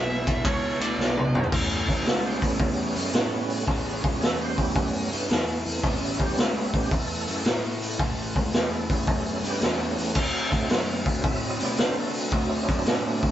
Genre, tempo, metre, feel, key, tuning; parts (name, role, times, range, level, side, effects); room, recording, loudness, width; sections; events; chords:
blues rock power trio and southern rock; 111 BPM; 4/4; swing 67% on 8ths; A mixolydian; A4 = 440 Hz
smooth overdriven lead guitar; melody; 0.0-1.5 s; C#5 to E5; -30 LUFS; right 3 dB; wah
tonewheel organ; sustained chords; 0.0-13.3 s; F#3 to E5; -31 LUFS; right 3 dB; slow rotary speaker, overdrive, chorus vibrato
crunchy overdriven guitar; riff; 0.0-13.3 s; E2 to D4; -31 LUFS; left 1 dB
fuzz picked electric bass; bass; 0.0-13.3 s; A1 to D3; -33 LUFS; equal; overdrive
raw garage drum kit; drums; 0.3-13.3 s; crash cymbal, hi-hat, kick drum, ride cymbal, snare drum, toms; -25 LUFS; equal
light reverb; band playing live in one room, nothing above 7.9 kHz; -23 LUFS; side -12 dB against mid
0.0-1.5 A section; 1.5-13.3 A section
lead electric guitar solo 0.0-1.5; drum fill 1.0-1.5; tonewheel organ solo 1.5-13.3
0.0 E7; 1.5 A7; 10.2 D7